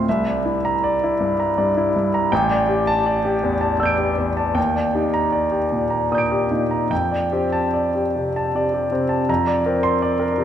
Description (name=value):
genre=classical, impressionist solo piano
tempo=78 BPM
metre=3/4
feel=uneven beats, rubato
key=unclear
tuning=A4 = 441 Hz
part: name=clear concert grand piano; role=solo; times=0.0-10.4 s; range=A1 to D7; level=-18 LUFS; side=equal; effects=none
room=wet scoring stage reverb, RT60 1.5 s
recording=none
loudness=-18 LUFS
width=side -10 dB against mid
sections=0.0-10.4 A section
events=none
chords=0.1 C9; 2.3 A7sus4; 4.6 Ebmaj7; 6.9 F69; 9.3 C9sus4/F